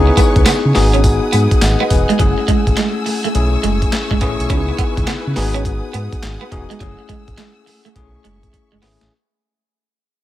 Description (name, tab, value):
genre	R&B, new jack swing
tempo	104 BPM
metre	4/4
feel	swing 65% on 16ths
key	unclear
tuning	A4 = 440 Hz
part	bell-like tine electric piano	accompaniment	0.0-9.1 s	A3 to G#5	-20 LUFS	left 4 dB	fast stereo tremolo
part	warm symphonic string section	sustained chords	0.0-9.1 s	A3 to E6	-26 LUFS	left 1 dB	none
part	smooth synth bass	bass	0.0-9.1 s	E1 to C#3	-17 LUFS	equal	none
part	clean electric guitar	riff	0.1-8.9 s	F#3 to C#4	-21 LUFS	right 6 dB	wide subtle chorus
part	dusty soul sampler-style drum kit	drums	0.2-9.1 s	handclaps, hi-hat, kick drum, snare drum, tambourine	-17 LUFS	equal	overdrive
room	digital ambience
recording	none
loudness	-13 LUFS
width	side -14 dB against mid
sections	0.0-9.1 A section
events	fade-out 0.0-9.1; drum fill 8.5-9.1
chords	0.0 C#m7; 0.7 G#m7; 2.2 F#m9; 3.3 B13sus4; 4.5 C#m7; 5.4 G#m7; 6.8 F#m9; 8.0 B13sus4